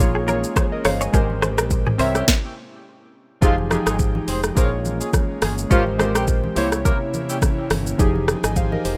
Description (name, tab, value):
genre	afrobeats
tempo	105 BPM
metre	4/4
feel	swing 55% on 16ths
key	F minor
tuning	A4 = 441 Hz
part	warm analog keys	accompaniment	0.0-9.0 s	C3 to Ab5	-26 LUFS	equal	chorus
part	airy breathy pad	sustained chords	0.0-9.0 s	C3 to G5	-34 LUFS	equal	chorus
part	mellow fretless electric bass	bass	0.0-9.0 s	F1 to C2	-28 LUFS	equal	none
part	afro-pop drum kit	drums	0.0-9.0 s	hi-hat, kick drum, rim click, shaker, snare drum, toms	-22 LUFS	equal	none
part	congas	percussion	0.0-8.8 s	none	-34 LUFS	equal	none
part	direct-recorded clean electric guitar	riff	0.2-2.1 s	Ab4 to Db5	-28 LUFS	equal	ensemble chorus, tape echo
part	warm horn section	second line	2.1-7.4 s	F3 to C5	-30 LUFS	equal	tape echo
room	little or no reverb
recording	rough home demo mix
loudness	-20 LUFS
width	mono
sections	0.0-3.4 A section; 3.4-9.0 B section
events	band accent 1.1-3.4; stop 2.3-3.4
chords	0.0 Bbm7; 1.1 Abmaj9; 2.0 C7b9; 3.4 Fm9; 4.6 Bbm7; 5.7 Abmaj9; 6.6 C7b9; 8.0 Fm9